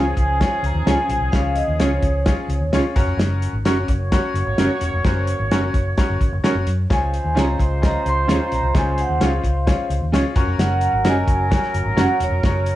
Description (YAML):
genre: uptempo 1960s-style soul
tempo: 130 BPM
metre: 4/4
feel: straight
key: Db major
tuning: A4 = 440 Hz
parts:
  - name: vibraphone with soft mallets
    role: melody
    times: 0.0-2.7, 6.9-12.8 s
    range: Db5 to C6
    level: -23 LUFS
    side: right 1 dB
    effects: plate reverb
  - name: warm horn section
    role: second line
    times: 0.0-12.8 s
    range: F3 to Db5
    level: -27 LUFS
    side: right 1 dB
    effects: plate reverb, analog delay
  - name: bright upright piano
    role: accompaniment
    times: 0.0-12.7 s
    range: Db3 to Eb5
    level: -27 LUFS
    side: left 3 dB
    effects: plate reverb
  - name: mellow electric guitar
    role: stabs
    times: 0.0-12.1 s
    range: Db4 to Db5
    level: -24 LUFS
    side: right 3 dB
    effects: plate reverb
  - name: vintage muted fingered electric bass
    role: bass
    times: 0.0-12.7 s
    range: Fb1 to Gb2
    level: -22 LUFS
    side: equal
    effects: none
  - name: warm soul drum kit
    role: drums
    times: 0.2-12.8 s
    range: hi-hat, kick drum, snare drum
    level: -21 LUFS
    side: equal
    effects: none
room: moderate club reverb, RT60 0.6 s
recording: none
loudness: -17 LUFS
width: side -14 dB against mid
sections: 0.0-12.8 A section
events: none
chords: 0.0 Db; 3.0 Gb; 6.9 Db; 10.4 Gb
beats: 0.40 0.87 | 1.33 1.80 2.26 2.73 | 3.19 3.65 4.12 4.58 | 5.05 5.51 5.97 6.43 | 6.90 7.36 7.82 8.28 | 8.74 9.21 9.67 10.13 | 10.59 11.05 11.51 11.97 | 12.43